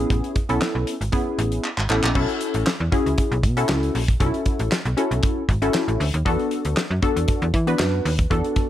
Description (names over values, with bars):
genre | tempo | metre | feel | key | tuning
early-eighties boogie funk | 117 BPM | 4/4 | straight | unclear | A4 = 440 Hz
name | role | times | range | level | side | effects
funky polysynth comp | accompaniment | 0.0-8.7 s | B3 to B4 | -23 LUFS | left 2 dB | chorus
slap-like FM bass | bass | 0.0-8.4 s | G#1 to E3 | -23 LUFS | equal | none
damped 70s drum kit | drums | 0.1-8.7 s | crash cymbal, handclaps, hi-hat, kick drum, snare drum | -23 LUFS | equal | none
room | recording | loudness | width
small room ambience | none | -19 LUFS | side -12 dB against mid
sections
0.0-2.2 A section; 2.2-8.7 B section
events
drum fill 1.6-2.2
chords
0.0 Amaj9; 2.2 B9sus4; 6.3 E9sus4